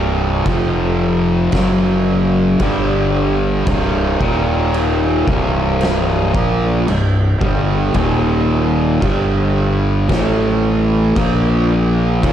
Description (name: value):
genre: stoner and doom metal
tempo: 56 BPM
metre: 4/4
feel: straight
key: C dorian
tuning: A4 = 440 Hz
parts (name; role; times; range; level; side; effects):
- fuzz guitar; riff; 0.0-12.3 s; C2 to Bb3; -15 LUFS; equal; distortion
- fuzz fingered electric bass; bass; 0.0-12.3 s; C1 to Bb1; -20 LUFS; equal; overdrive
- oversized low-tuned drum kit; drums; 0.5-12.3 s; crash cymbal, kick drum, snare drum; -22 LUFS; equal; none
room: studio reverb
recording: dark, warm production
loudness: -13 LUFS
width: side -10 dB against mid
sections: 0.0-12.3 A section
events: none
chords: 0.5 F5; 1.5 F#5; 2.6 G5; 3.7 C5; 4.2 Eb5; 5.3 C5; 8.0 Eb5; 9.0 G5; 10.1 A5; 11.2 Bb5